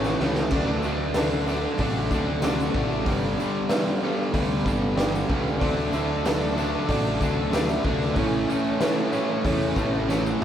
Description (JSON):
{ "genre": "classic rock", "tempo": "94 BPM", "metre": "4/4", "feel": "straight", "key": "unclear", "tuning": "A4 = 440 Hz", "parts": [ { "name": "warm upright piano", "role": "accompaniment", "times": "0.0-10.4 s", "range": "C#4 to B5", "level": "-34 LUFS", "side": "right 2 dB", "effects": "none" }, { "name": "crunchy overdriven guitar", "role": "riff", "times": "0.0-10.4 s", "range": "G2 to D4", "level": "-30 LUFS", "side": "right 7 dB", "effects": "none" }, { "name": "crunchy overdriven guitar", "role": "riff", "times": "0.0-10.4 s", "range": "G2 to E4", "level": "-30 LUFS", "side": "equal", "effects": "none" }, { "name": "overdriven semi-hollow guitar", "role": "riff", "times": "0.0-10.4 s", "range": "G2 to D4", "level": "-30 LUFS", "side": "left 6 dB", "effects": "none" }, { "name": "picked electric bass", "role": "bass", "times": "0.0-10.4 s", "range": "G1 to E2", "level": "-30 LUFS", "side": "equal", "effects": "none" }, { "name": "raw garage drum kit", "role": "drums", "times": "0.0-10.4 s", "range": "crash cymbal, hi-hat, kick drum, snare drum, toms", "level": "-26 LUFS", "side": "equal", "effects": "none" }, { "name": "tambourine", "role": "percussion", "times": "0.0-10.4 s", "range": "none", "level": "-50 LUFS", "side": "left 5 dB", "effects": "none" }, { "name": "octave-fuzz lead guitar", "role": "second line", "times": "5.6-10.0 s", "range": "C4 to A4", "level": "-32 LUFS", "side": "left 2 dB", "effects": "distortion" } ], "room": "moderate studio reverb, RT60 0.7 s", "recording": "band playing live in one room", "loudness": "-22 LUFS", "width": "side -10 dB against mid", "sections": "0.0-10.4 A section", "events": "upright piano fill 0.0-0.5, 4.3-5.6; drum fill 0.0-0.5, 10.1-10.4", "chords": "0.0 A; 0.5 D; 3.1 G; 5.6 D; 8.2 A" }